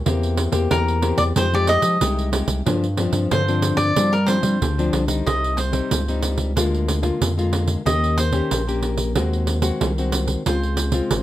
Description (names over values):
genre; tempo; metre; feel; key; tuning
samba and choro; 92 BPM; 4/4; straight; C minor; A4 = 442 Hz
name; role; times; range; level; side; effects
nylon-string guitar; accompaniment; 0.0-11.2 s; G2 to G4; -24 LUFS; left 4 dB; none
saturated sub bass; bass; 0.0-11.2 s; Ab1 to G3; -22 LUFS; equal; none
pandeiro; percussion; 0.1-11.2 s; none; -24 LUFS; right 4 dB; none
cavaquinho; melody; 0.7-11.2 s; Bb4 to Eb5; -22 LUFS; equal; none
room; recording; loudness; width
light reverb; none; -18 LUFS; side -13 dB against mid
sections
0.0-5.3 A section; 5.3-11.2 B section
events
cavaquinho solo 5.3-11.2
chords
0.1 C7/E; 1.4 Fm9; 2.7 G7sus4; 5.3 Cm; 6.6 Bb7/D; 7.9 Eb7; 9.2 Ab7/Eb; 10.5 Dbmaj7